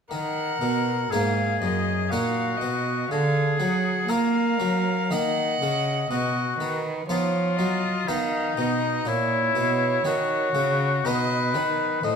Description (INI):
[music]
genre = classical, baroque-style sonata movement with continuo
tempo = 61 BPM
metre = 3/4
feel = straight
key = Eb minor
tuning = A4 = 440 Hz
[part]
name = warm oboe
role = melody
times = 0.1-12.2 s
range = D#4 to Eb5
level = -26 LUFS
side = left 5 dB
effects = none
[part]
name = rich violin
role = second line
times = 0.1-12.2 s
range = B4 to Gb5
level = -29 LUFS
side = right 5 dB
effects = none
[part]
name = harpsichord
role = accompaniment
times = 0.1-12.2 s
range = Gb2 to F4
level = -29 LUFS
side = equal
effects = none
[part]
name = rich cello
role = bass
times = 0.1-12.2 s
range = Gb2 to Bb3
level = -27 LUFS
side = right 2 dB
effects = none
[sound]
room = moderate recital hall reverb, RT60 1.4 s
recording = none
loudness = -22 LUFS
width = side -6 dB against mid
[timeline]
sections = 0.1-12.2 A section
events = none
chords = 0.1 Ebm; 3.1 Bb7/D; 5.1 Ebm; 6.1 B; 9.1 Gb7/Bb; 11.1 B